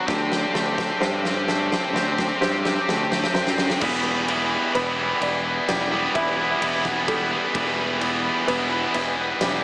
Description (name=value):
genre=post-rock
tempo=64 BPM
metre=4/4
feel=straight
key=E minor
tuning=A4 = 441 Hz
part: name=felt-muted upright piano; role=arpeggios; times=0.0-9.4 s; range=A4 to E5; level=-32 LUFS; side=right 1 dB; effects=none
part: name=twangy electric guitar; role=arpeggios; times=0.0-9.6 s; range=E2 to G4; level=-28 LUFS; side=equal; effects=digital delay
part: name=tight distorted guitar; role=riff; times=0.0-9.6 s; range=E3 to G4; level=-24 LUFS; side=left 1 dB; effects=distortion
part: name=modern bright picked electric bass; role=bass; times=0.1-9.6 s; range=E1 to G2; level=-30 LUFS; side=equal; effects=none
part: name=huge arena drum kit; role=drums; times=0.1-9.6 s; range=crash cymbal, kick drum, ride cymbal, snare drum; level=-27 LUFS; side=equal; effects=none
part: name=tight distorted guitar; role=riff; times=3.8-9.0 s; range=E3 to E4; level=-26 LUFS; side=right 2 dB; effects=distortion
room=light reverb, studio ambience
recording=small speaker sound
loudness=-20 LUFS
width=side -24 dB against mid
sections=0.0-3.8 A section; 3.8-9.6 B section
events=build-up 0.0-3.8; drum fill 0.0-3.8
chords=0.1 D7sus4; 3.8 Em